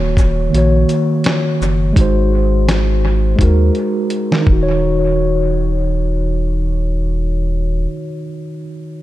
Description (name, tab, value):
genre	lo-fi hip hop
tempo	84 BPM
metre	4/4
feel	swing 56% on 16ths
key	Eb dorian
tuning	A4 = 440 Hz
part	mellow tine electric piano	accompaniment	0.0-9.0 s	Eb3 to Db5	-17 LUFS	equal	medium stereo tremolo, dub echo
part	warm sub bass	bass	0.0-7.9 s	Eb1 to Eb2	-16 LUFS	equal	none
part	dusty soul sampler-style drum kit	drums	0.2-4.6 s	hi-hat, kick drum, shaker, snare drum	-17 LUFS	equal	dub echo
room	light reverb, digital ambience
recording	echo-heavy mix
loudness	-13 LUFS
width	side -15 dB against mid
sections	0.0-4.8 A section; 4.8-7.7 B section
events	drum fill 3.4-4.8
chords	0.0 Ebm7; 2.0 Ab7; 4.5 Ebm7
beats	0.53 1.25 | 1.96 2.68 3.39 4.11 | 4.82 5.53 6.25 6.96